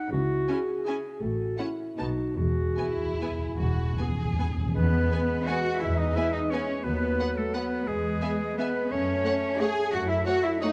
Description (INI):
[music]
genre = classical, orchestral ballroom waltz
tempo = 141-190 BPM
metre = 3/4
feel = rubato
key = E major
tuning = A4 = 440 Hz
[part]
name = warm clarinet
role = second line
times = 0.0-10.7 s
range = E4 to C#5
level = -38 LUFS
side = equal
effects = none
[part]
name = mellow French horn section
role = sustained chords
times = 0.0-10.7 s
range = G#3 to G#4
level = -36 LUFS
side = equal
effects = none
[part]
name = dark symphonic double bass section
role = bass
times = 0.1-10.2 s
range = E1 to F#2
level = -33 LUFS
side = equal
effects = none
[part]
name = warm symphonic cello section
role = bass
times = 0.1-10.7 s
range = E2 to G#4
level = -34 LUFS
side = equal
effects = none
[part]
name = warm symphonic violin section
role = melody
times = 0.5-10.7 s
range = F#5 to A5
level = -45 LUFS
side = equal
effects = none
[part]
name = warm symphonic violin section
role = second line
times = 0.5-10.7 s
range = D#4 to E5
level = -42 LUFS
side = equal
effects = none
[part]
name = rich studio viola section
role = accompaniment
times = 0.5-10.7 s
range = A3 to C#4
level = -40 LUFS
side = equal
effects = none
[part]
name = timpani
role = percussion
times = 2.4-5.3 s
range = E2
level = -33 LUFS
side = equal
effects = none
[part]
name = mellow bassoon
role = accompaniment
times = 4.7-10.7 s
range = F#3 to A3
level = -38 LUFS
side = equal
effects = none
[part]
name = clear oboe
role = second line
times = 4.8-10.7 s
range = G#4 to G#5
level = -38 LUFS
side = equal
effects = none
[part]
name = mellow hollow silver concert flute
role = second line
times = 4.8-10.7 s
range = G#4 to G#5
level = -35 LUFS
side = equal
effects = none
[sound]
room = moderate concert hall reverb, RT60 2.4 s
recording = none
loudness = -28 LUFS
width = mono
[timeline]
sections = 0.0-4.8 A section; 4.8-10.7 B section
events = timpani fill 2.4-4.8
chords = 0.1 C#m; 1.2 F#m7/A; 2.0 B; 2.4 E; 6.8 B/D#; 7.9 E; 8.9 F#m